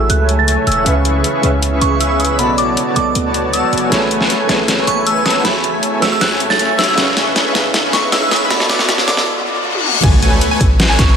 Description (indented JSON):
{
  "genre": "future bass",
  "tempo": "157 BPM",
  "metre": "4/4",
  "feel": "half-time",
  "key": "B dorian",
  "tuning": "A4 = 441 Hz",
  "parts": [
    { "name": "glassy synth bell", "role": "melody", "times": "0.0-11.2 s", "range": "B5 to A6", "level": "-19 LUFS", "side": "right 1 dB", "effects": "chorus, phaser, sidechain pumping, low-pass filter, digital delay" },
    { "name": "felt-muted upright piano", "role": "accompaniment", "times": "0.0-10.1 s", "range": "B2 to E5", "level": "-22 LUFS", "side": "right 3 dB", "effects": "sidechain pumping, digital delay" },
    { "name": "shimmering ambient pad", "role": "sustained chords", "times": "0.0-10.0 s", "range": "C#3 to G#4", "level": "-26 LUFS", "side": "equal", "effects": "chorus, built-in reverb, sidechain pumping" },
    { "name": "warm 808-style bass", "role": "bass", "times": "0.0-11.2 s", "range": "E1 to D2", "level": "-19 LUFS", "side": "equal", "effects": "sidechain pumping" },
    { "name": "riser, reverse cymbal and impact", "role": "sound effects", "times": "2.1-11.2 s", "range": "none", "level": "-24 LUFS", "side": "left 1 dB", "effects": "none" },
    { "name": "dubstep drum kit", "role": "drums", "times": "0.1-11.1 s", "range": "crash cymbal, hi-hat, snare drum, toms", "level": "-16 LUFS", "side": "left 1 dB", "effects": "none" },
    { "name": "soft supersaw", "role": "riff", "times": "0.2-11.2 s", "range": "A3 to C#6", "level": "-18 LUFS", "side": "equal", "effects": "sidechain pumping, low-pass filter" },
    { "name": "wide unison pluck", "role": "arpeggios", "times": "10.0-11.2 s", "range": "G#5", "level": "-22 LUFS", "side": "equal", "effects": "sidechain pumping" },
    { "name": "electronic kick drum", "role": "drums", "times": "10.0-11.1 s", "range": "none", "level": "-12 LUFS", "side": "equal", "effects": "none" }
  ],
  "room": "moderate huge ambient reverb, RT60 5.0 s",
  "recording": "high-pass filter",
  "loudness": "-12 LUFS",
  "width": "side -7 dB against mid",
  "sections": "0.0-10.0 A section; 10.0-11.2 B section",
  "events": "build-up 0.0-10.0; filter sweep on supersaw synth 0.0-10.0; filter sweep on synth bell 0.0-10.0; filter sweep on ambient pad 0.0-10.0; filter sweep 0.0-10.0; drum fill 3.9-9.3, 9.7; break 9.3-10.0; reverse cymbal 9.3-10.0; drop 10.0-11.2; impact 10.0-11.2",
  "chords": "0.0 F#m7/A; 0.9 C#m7; 2.4 Bm7; 3.9 Amaj7; 5.4 F#m7/A; 7.0 C#m7; 8.5 Bm7; 10.0 Amaj7"
}